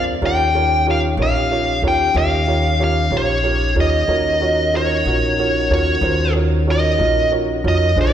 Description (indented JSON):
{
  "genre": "blues",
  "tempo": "62 BPM (dotted quarters)",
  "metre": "12/8",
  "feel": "straight",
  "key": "unclear",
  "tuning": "A4 = 439 Hz",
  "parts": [
    { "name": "biting lead guitar", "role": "melody", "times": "0.0-8.1 s", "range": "Db5 to G5", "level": "-18 LUFS", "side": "equal", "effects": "overdrive" },
    { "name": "warm upright piano", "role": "accompaniment", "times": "0.0-8.1 s", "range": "D4 to F5", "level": "-22 LUFS", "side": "right 4 dB", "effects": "none" },
    { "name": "mellow tonewheel organ", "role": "sustained chords", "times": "0.0-8.1 s", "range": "Db3 to Cb5", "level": "-26 LUFS", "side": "left 2 dB", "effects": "slow rotary speaker" },
    { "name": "upright bass", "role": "bass", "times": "0.0-8.1 s", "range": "Bb1 to F2", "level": "-20 LUFS", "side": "equal", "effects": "none" }
  ],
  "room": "wet concert hall reverb, RT60 2.5 s",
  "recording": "recorded in a church or concert hall",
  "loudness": "-15 LUFS",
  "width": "side -9 dB against mid",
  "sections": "0.0-8.1 A section",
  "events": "none",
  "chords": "0.2 Eb9; 4.1 Ebm7"
}